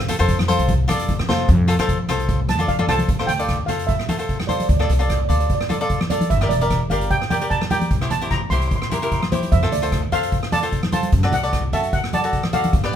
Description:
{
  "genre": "calypso",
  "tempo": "149 BPM",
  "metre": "4/4",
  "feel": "swing 54% on 16ths",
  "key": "F major",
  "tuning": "A4 = 441 Hz",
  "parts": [
    { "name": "steel pan", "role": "melody", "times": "0.0-12.9 s", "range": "A4 to C6", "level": "-24 LUFS", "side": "right 2 dB", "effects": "none" },
    { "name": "upright bass", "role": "bass", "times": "0.0-12.9 s", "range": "E1 to F3", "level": "-21 LUFS", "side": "equal", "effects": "none" },
    { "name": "cavaquinho", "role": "accompaniment", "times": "0.1-13.0 s", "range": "E4 to E5", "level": "-24 LUFS", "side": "left 2 dB", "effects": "none" },
    { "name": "street-band drum kit", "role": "drums", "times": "0.1-13.0 s", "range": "hi-hat, kick drum, rim click, snare drum", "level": "-23 LUFS", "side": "equal", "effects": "none" },
    { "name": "congas", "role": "percussion", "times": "0.1-12.7 s", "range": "none", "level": "-26 LUFS", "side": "equal", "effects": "none" }
  ],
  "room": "moderate studio reverb, RT60 0.5 s",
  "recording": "minimal, uncompressed stereo recording",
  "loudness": "-17 LUFS",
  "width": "side -9 dB against mid",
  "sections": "0.0-1.5 A section; 1.5-3.1 B section; 3.1-13.0 C section",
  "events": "drum fill 0.5-1.5",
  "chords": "0.0 F; 4.7 Dm; 6.3 Gm; 7.9 C; 9.5 F; 11.1 D"
}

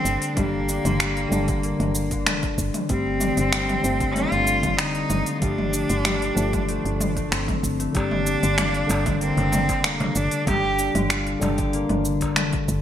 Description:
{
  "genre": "organic downtempo",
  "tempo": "95 BPM",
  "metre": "4/4",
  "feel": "straight",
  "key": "G minor",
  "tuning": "A4 = 439 Hz",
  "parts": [
    { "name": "bright cello", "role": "melody", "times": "0.0-11.1 s", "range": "Bb3 to G4", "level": "-26 LUFS", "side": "right 1 dB", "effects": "digital delay" },
    { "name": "tine electric piano", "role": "accompaniment", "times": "0.0-12.8 s", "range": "D3 to D4", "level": "-28 LUFS", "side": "left 2 dB", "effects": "sidechain pumping, digital delay" },
    { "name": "concert harp", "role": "arpeggios", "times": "0.0-12.8 s", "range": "D3 to F4", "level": "-27 LUFS", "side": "left 3 dB", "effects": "digital delay" },
    { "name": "woody FM bass", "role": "bass", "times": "0.0-12.8 s", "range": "F1 to G1", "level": "-28 LUFS", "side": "right 1 dB", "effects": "none" },
    { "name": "organic electronic drum kit", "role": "drums", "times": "0.1-12.8 s", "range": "finger snaps, hi-hat, shaker, toms", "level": "-26 LUFS", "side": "equal", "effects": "gated reverb" },
    { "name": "electronic kick drum", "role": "drums", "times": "0.4-12.8 s", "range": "none", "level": "-28 LUFS", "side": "right 1 dB", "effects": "none" },
    { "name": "darbuka", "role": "percussion", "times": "8.0-12.3 s", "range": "none", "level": "-33 LUFS", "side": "equal", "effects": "none" }
  ],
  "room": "moderate plate reverb, RT60 1.7 s",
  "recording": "bright 1980s-style digital production",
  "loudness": "-20 LUFS",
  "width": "side -10 dB against mid",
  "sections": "0.0-12.8 A section",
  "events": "none",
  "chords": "0.0 Gm; 2.9 F/G; 5.4 Dm/G; 7.9 Gm"
}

